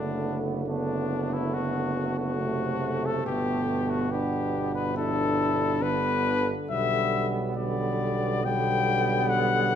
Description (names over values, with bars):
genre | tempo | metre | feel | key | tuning
classical, brass quintet | 70 BPM | 4/4 | straight | G major | A4 = 440 Hz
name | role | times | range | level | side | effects
warm trumpet | melody | 0.0-9.8 s | D4 to G5 | -29 LUFS | left 6 dB | none
mellow flugelhorn | second line | 0.0-9.8 s | A3 to E4 | -33 LUFS | right 7 dB | none
warm French horn | accompaniment | 0.0-9.8 s | G3 to D4 | -31 LUFS | left 2 dB | none
warm trombone | accompaniment | 0.0-9.8 s | B2 to D3 | -34 LUFS | right 2 dB | none
warm tuba | bass | 0.0-9.8 s | F#1 to B1 | -31 LUFS | right 3 dB | none
room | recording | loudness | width
moderate recital hall reverb, RT60 1.6 s | none | -24 LUFS | side -8 dB against mid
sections
0.0-9.8 A section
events
none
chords
0.0 D7/F#; 3.3 G; 6.7 G/B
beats
0.69 1.55 2.41 | 3.26 4.11 4.96 5.82 | 6.71 7.57 8.44 9.30